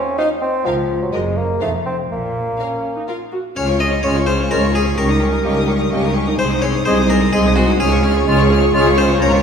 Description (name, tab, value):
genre	cinematic, playful, whimsical film cue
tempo	127 BPM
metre	3/4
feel	straight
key	Bb minor, Db major from 3.6 s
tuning	A4 = 438 Hz
part	warm bassoon	accompaniment	0.0-9.4 s	F3 to Eb4	-22 LUFS	equal	none
part	clear studio violin section	melody	0.2-9.4 s	Eb5 to F6	-27 LUFS	left 3 dB	none
part	rich studio violin section	second line	0.2-9.4 s	G4 to Db5	-25 LUFS	left 4 dB	none
part	dark studio viola section	accompaniment	0.2-9.4 s	C4 to Gb4	-24 LUFS	equal	none
part	clear studio cello section	bass	0.7-9.4 s	C2 to Bb2	-21 LUFS	right 1 dB	none
part	rich studio double bass section	bass	0.7-9.4 s	F1 to Db2	-22 LUFS	right 1 dB	none
part	harpsichord	melody	3.6-9.4 s	Gb4 to Eb5	-23 LUFS	left 2 dB	none
part	mellow hollow silver concert flute	second line	3.6-9.4 s	Gb4 to Eb5	-22 LUFS	right 2 dB	none
part	dark French horn section	sustained chords	3.6-9.4 s	G3 to F4	-23 LUFS	left 4 dB	none
part	mellow clarinet	second line	4.0-9.4 s	F4 to Ab4	-25 LUFS	left 2 dB	none
part	mellow cor anglais	second line	4.0-9.4 s	Db5 to Eb5	-28 LUFS	right 4 dB	none
room	wet scoring stage reverb, RT60 1.6 s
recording	heard from further back in the room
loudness	-14 LUFS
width	side -6 dB against mid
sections	0.0-3.6 A section; 3.6-9.4 B section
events	none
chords	0.0 F5; 0.7 Bbm/Db (rootless); 1.1 Ebm/Gb (rootless); 1.6 F; 2.1 Bbm; 3.6 Db; 5.0 Eb7/Db; 6.4 Ab/C; 7.8 Db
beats	0.19 | 0.66 1.14 1.61 | 2.10 2.59 3.08 | 3.56 4.04 4.51 | 4.98 5.45 5.92 | 6.39 6.87 7.34 | 7.81 8.28 8.74 | 9.21